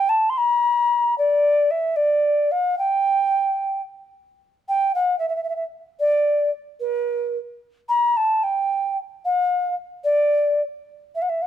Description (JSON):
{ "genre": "arabic", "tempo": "74 BPM (dotted quarters)", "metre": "6/8", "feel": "straight", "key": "G maqam rast", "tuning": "A4 = 440 Hz", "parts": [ { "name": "mellow alto ocarina", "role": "solo", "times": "0.0-11.5 s", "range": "B4-48c to C6", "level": "-19 LUFS", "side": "equal", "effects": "none" } ], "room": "light reverb", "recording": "close, detailed microphones", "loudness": "-19 LUFS", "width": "side -10 dB against mid", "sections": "0.0-4.4 A section; 4.4-11.5 B section", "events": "none", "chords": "none", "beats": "0.35 | 1.16 1.96 | 2.77 3.58 | 4.39 5.20 | 6.00 6.81 | 7.62 8.43 | 9.24 10.05 | 10.86" }